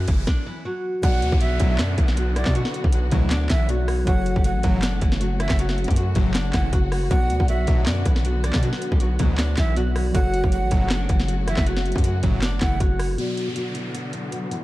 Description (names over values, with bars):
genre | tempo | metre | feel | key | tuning
hip hop, trap | 158 BPM | 4/4 | half-time | B minor | A4 = 439 Hz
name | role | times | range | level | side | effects
picked steel-string acoustic guitar | melody | 0.0-14.6 s | E3 to D5 | -29 LUFS | equal | low-pass filter
warbly lo-fi synth keys | accompaniment | 0.0-14.6 s | B2 to D5 | -33 LUFS | left 1 dB | chorus, low-pass filter
distorted 808-style bass | bass | 0.0-13.2 s | F#1 to B2 | -23 LUFS | equal | distortion
riser and downlifter | sound effects | 0.0-4.1, 13.2-14.6 s | none | -36 LUFS | equal | none
trap drum kit | drums | 0.1-14.6 s | handclaps, hi-hat, kick drum, rim click, snare drum | -22 LUFS | equal | none
breathy jazz flute | second line | 1.0-12.8 s | D5 to F#5 | -31 LUFS | right 2 dB | digital delay
warm symphonic string section | sustained chords | 1.0-14.6 s | C#3 to F#4 | -32 LUFS | left 2 dB | low-pass filter
big bright polysynth | stabs | 1.6-12.4 s | C#2 to F#3 | -28 LUFS | equal | none
room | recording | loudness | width
digital ambience | dark, warm production | -19 LUFS | side -17 dB against mid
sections
0.0-1.0 A section; 1.0-13.2 B section; 13.2-14.6 C section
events
riser 0.0-1.0; stop 0.3-1.0; filter sweep 13.2-14.6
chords
0.0 F#m; 1.0 Bm; 4.1 F#m; 7.1 Bm; 10.1 F#m; 13.2 Bm